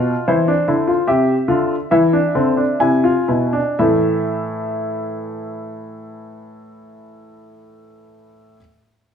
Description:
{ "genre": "classical, baroque-style 3-part fugue for grand piano", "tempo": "59-78 BPM", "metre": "4/4", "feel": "straight", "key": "A minor", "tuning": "A4 = 440 Hz", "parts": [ { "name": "warm baby grand piano", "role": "solo", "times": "0.0-8.6 s", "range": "A2 to G#5", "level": "-16 LUFS", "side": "left 1 dB", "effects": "none" } ], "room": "wet stone room reverb, RT60 1.1 s", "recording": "heard from further back in the room", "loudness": "-15 LUFS", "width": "side -7 dB against mid", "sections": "0.0-3.8 A section; 3.8-7.8 B section", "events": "slowing down 0.0-3.8", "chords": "0.3 Cadd9; 1.9 E7; 3.8 A5" }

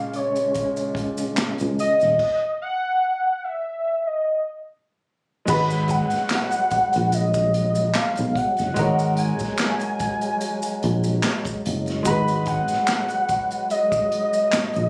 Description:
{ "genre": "R&B, neo-soul", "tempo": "73 BPM", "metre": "4/4", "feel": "swing 54% on 16ths", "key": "G# minor", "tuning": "A4 = 441 Hz", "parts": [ { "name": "warm velvety synth lead", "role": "melody", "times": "0.0-14.9 s", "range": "C#5 to B5", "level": "-24 LUFS", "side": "equal", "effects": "chorus, slapback echo" }, { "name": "clear upright piano", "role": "accompaniment", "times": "0.0-14.9 s", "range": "A#2 to C#5", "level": "-33 LUFS", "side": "equal", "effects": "none" }, { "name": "percussive tonewheel organ", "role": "sustained chords", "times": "0.0-14.9 s", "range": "C#3 to C#4", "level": "-32 LUFS", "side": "equal", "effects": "slow rotary speaker, overdrive, chorus vibrato" }, { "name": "unplugged drum kit", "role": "drums", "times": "0.1-14.9 s", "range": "crash cymbal, handclaps, hi-hat, kick drum, snare drum", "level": "-31 LUFS", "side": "equal", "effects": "none" }, { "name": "maracas and finger snaps", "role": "percussion", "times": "0.4-14.9 s", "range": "none", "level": "-38 LUFS", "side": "equal", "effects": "none" }, { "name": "sustaining fretless electric bass", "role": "bass", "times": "1.4-14.9 s", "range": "D#1 to C#2", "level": "-26 LUFS", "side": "equal", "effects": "none" } ], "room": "moderate studio reverb, RT60 0.6 s", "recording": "recorded on a phone in the room, studio reverb", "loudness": "-22 LUFS", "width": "mono", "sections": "0.0-5.5 A section; 5.5-14.9 B section", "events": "soft synth lead solo 0.0-5.5; stop 2.2-5.5", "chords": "0.0 A#m7; 2.2 N.C.; 5.5 G#m9" }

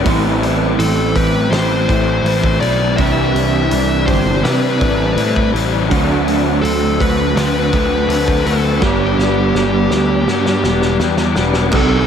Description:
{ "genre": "rock, shoegaze and dream pop", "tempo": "82 BPM", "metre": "4/4", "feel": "straight", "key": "G major", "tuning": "A4 = 436 Hz", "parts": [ { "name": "electric guitar through a small old amp", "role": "arpeggios", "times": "0.0-12.1 s", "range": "Eb3 to G4", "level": "-26 LUFS", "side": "equal", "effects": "wide subtle chorus, ping-pong delay" }, { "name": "crunchy overdriven guitar", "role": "riff", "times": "0.0-12.1 s", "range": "G2 to G4", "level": "-18 LUFS", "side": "left 8 dB", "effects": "ensemble chorus" }, { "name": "electric guitar through a small old amp", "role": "riff", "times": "0.0-12.1 s", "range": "A2 to C5", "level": "-20 LUFS", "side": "right 9 dB", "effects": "reverse reverb" }, { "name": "fuzz picked electric bass", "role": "bass", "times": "0.0-12.1 s", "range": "E1 to C3", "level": "-18 LUFS", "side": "equal", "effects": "overdrive" }, { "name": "loose indie drum kit", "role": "drums", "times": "0.1-11.9 s", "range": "crash cymbal, hi-hat, kick drum, snare drum", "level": "-22 LUFS", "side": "equal", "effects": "none" }, { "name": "fuzz lead guitar", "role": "melody", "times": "0.8-12.1 s", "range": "G4 to E5", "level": "-20 LUFS", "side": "equal", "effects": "distortion, ping-pong delay" } ], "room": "moderate cathedral reverb, RT60 5.2 s", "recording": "dreamy mix soaked in reverb", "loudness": "-12 LUFS", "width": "side -8 dB against mid", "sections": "0.0-11.7 A section", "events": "drum fill 8.8-11.7", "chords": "0.1 Am7; 3.0 Cmaj9; 5.9 D7; 8.8 G" }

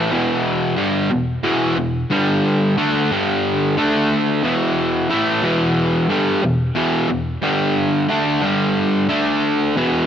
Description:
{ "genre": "rock", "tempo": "90 BPM", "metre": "4/4", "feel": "straight", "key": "E minor", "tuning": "A4 = 441 Hz", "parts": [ { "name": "overdriven semi-hollow guitar", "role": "solo", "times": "0.0-10.1 s", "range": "E2 to D4", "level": "-16 LUFS", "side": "equal", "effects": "none" } ], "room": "light reverb, digital ambience", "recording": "nothing above 7.8 kHz", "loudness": "-16 LUFS", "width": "side -9 dB against mid", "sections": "0.0-10.1 A section", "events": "none", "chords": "0.0 Em; 2.1 G5; 2.8 D5; 3.1 G5; 3.8 D5; 4.4 Em; 7.4 G5; 8.1 D5; 8.4 G5; 9.1 D5" }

